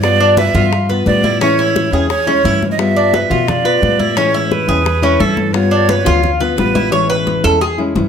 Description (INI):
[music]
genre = latin, Cuban son and guajira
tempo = 174 BPM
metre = 4/4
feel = straight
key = A major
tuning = A4 = 441 Hz
[part]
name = breathy bright jazz flute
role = second line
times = 0.0-6.9 s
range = A4 to E5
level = -17 LUFS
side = right 6 dB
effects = none
[part]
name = nylon-string guitar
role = accompaniment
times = 0.0-8.1 s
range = E3 to F4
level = -18 LUFS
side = left 5 dB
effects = none
[part]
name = upright bass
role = bass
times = 0.0-8.1 s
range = A1 to B2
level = -18 LUFS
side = equal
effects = none
[part]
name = bongos and cowbell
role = percussion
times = 0.0-8.1 s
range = none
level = -25 LUFS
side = left 8 dB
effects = none
[part]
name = congas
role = percussion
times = 0.0-8.1 s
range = none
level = -22 LUFS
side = left 1 dB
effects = none
[part]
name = Cuban tres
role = arpeggios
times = 0.2-7.8 s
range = C#4 to C#5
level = -16 LUFS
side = right 1 dB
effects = none
[sound]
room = moderate large studio reverb, RT60 1.3 s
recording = close, detailed microphones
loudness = -11 LUFS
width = side -7 dB against mid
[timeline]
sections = 0.0-6.9 A section; 6.9-8.1 B section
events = drum fill 5.9-6.9; Cuban tres solo 6.9-8.1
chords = 0.0 G7; 1.4 Amaj7; 2.8 G7; 4.2 Amaj7; 5.5 G7; 6.9 Amaj7